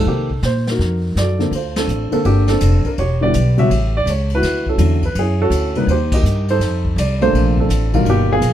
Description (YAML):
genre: jazz piano trio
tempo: 165 BPM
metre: 4/4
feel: swing 64% on 8ths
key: unclear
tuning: A4 = 440 Hz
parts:
  - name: dark baby grand piano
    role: melody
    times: 0.0-8.5 s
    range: Cb3 to E5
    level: -18 LUFS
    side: equal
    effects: none
  - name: upright bass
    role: bass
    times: 0.0-8.5 s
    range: E1 to C3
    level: -17 LUFS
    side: equal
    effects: none
  - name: jazz brush drum kit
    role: drums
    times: 0.1-8.5 s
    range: brushed snare drum, crash cymbal, hi-hat, kick drum, ride cymbal, snare drum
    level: -26 LUFS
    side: left 1 dB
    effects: none
room: light reverb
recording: dark, warm production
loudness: -14 LUFS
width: side -11 dB against mid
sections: 0.0-1.5 A section; 1.5-8.5 B section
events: band accent 1.7, 6.1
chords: 0.1 Cm7; 0.8 F7b9; 1.5 Bbmaj9; 3.0 Em7; 3.7 A; 4.4 Dmaj9; 5.9 Eb6; 6.6 F7; 7.3 Bbmaj9